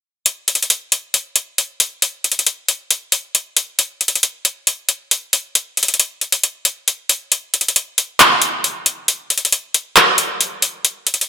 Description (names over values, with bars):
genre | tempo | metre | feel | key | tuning
hip hop | 136 BPM | 4/4 | half-time | none | none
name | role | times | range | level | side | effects
trap drum kit | drums | 0.3-11.3 s | handclaps, hi-hat | -12 LUFS | left 1 dB | none
room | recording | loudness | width
moderate scoring stage reverb, RT60 1.6 s, digital ambience | none | -14 LUFS | side -9 dB against mid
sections
0.3-11.3 A section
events
kick muted 0.3-7.3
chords
none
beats
| 0.26 0.70 1.14 1.58 | 2.02 2.46 2.90 3.35 | 3.79 4.23 4.67 5.11 | 5.55 5.99 6.43 6.88 | 7.32 7.76 8.20 8.64 | 9.08 9.52 9.96 10.40 | 10.85